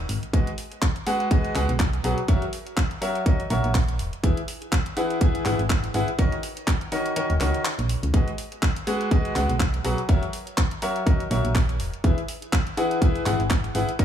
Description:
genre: piano house.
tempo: 123 BPM.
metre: 4/4.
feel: swing 56% on 16ths.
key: unclear.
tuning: A4 = 444 Hz.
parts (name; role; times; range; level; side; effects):
solid FM bass; bass; 0.0-14.0 s; D#1 to C#2; -25 LUFS; equal; sidechain pumping.
house drum kit; drums; 0.1-14.0 s; handclaps, hi-hat; -31 LUFS; equal; none.
bright concert grand piano; riff; 0.3-14.0 s; D#3 to F#5; -26 LUFS; left 1 dB; sidechain pumping, digital delay.
electronic kick drum; drums; 0.3-14.0 s; none; -21 LUFS; equal; none.
room: little or no reverb.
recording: small room ambience.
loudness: -21 LUFS.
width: side -9 dB against mid.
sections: 0.0-14.0 A section.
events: kick drops out 7.2-8.1.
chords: 0.3 G#m7; 2.3 F#7; 4.0 E; 6.2 D#m7; 8.1 G#m7; 10.1 F#7; 11.8 E.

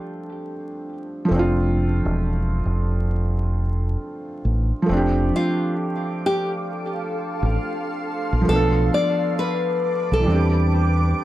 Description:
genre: lo-fi hip hop.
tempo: 67 BPM.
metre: 4/4.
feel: swing 66% on 16ths.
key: F major.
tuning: A4 = 440 Hz.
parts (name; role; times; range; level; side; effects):
felt-muted upright piano; accompaniment; 0.0-11.2 s; E3 to A4; -24 LUFS; right 1 dB; none.
deep dub fingered electric bass; bass; 1.3-11.1 s; E1 to E2; -20 LUFS; equal; none.
granular cloud pad; sustained chords; 5.6-11.2 s; A4 to D6; -29 LUFS; right 1 dB; built-in reverb.
nylon-string guitar; melody; 5.4-11.2 s; F4 to D5; -24 LUFS; left 2 dB; analog delay.
room: moderate studio reverb, RT60 0.5 s.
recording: vinyl crackle.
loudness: -19 LUFS.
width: side -14 dB against mid.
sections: 0.0-4.9 A section; 4.9-11.2 B section.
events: none.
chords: 0.0 F6; 8.5 Bm7b5; 10.3 C69/E.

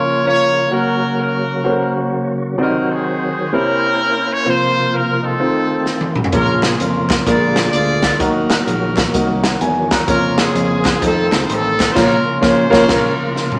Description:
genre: uptempo gospel.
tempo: 128 BPM.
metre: 4/4.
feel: swing 64% on 8ths.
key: Bb minor.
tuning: A4 = 440 Hz.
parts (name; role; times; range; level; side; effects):
clear horn section; melody; 0.0-13.6 s; C4 to D5; -21 LUFS; equal; none.
warm concert grand piano; accompaniment; 0.0-13.1 s; Bb2 to Bb5; -20 LUFS; equal; none.
bright tonewheel organ; sustained chords; 0.0-13.6 s; C3 to C5; -24 LUFS; equal; slow rotary speaker, chorus vibrato.
swinging big-band drum kit; drums; 5.9-13.6 s; crash cymbal, hi-hat, kick drum, snare drum, toms; -21 LUFS; equal; none.
fingered electric bass; bass; 6.3-13.1 s; A1 to F2; -24 LUFS; equal; none.
group handclap; percussion; 6.6-11.9 s; none; -29 LUFS; equal; none.
room: moderate studio reverb, RT60 0.8 s.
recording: none.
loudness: -16 LUFS.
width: mono.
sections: 0.0-13.6 A section.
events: drum fill 5.9-6.3, 13.4; grand piano fill 9.1-10.1; band accent 12.0-13.6.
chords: 0.0 Bbm; 0.7 Gb; 2.6 Cdim; 3.5 C7b9; 4.5 Fsus4; 5.4 F7; 6.3 Bbm; 7.3 Bb7; 8.2 Ebm; 10.1 Bbm/F; 11.0 F7; 12.0 Bbm.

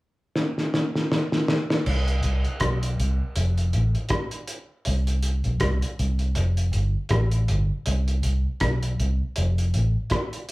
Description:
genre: roots reggae.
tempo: 80 BPM.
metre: 4/4.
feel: swing 58% on 16ths.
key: unclear.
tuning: A4 = 441 Hz.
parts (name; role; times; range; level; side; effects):
cloth-damped thuddy drum kit; drums; 0.4-10.5 s; crash cymbal, hi-hat, kick drum, rim click, snare drum; -26 LUFS; equal; none.
vintage muted fingered electric bass; bass; 1.9-10.0 s; F1 to C2; -22 LUFS; equal; none.
room: moderate large studio reverb, RT60 0.8 s.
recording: band playing live in one room.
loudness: -22 LUFS.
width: side -20 dB against mid.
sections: 0.0-1.9 A section; 1.9-10.5 B section.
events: drum fill 0.4-1.9.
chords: none.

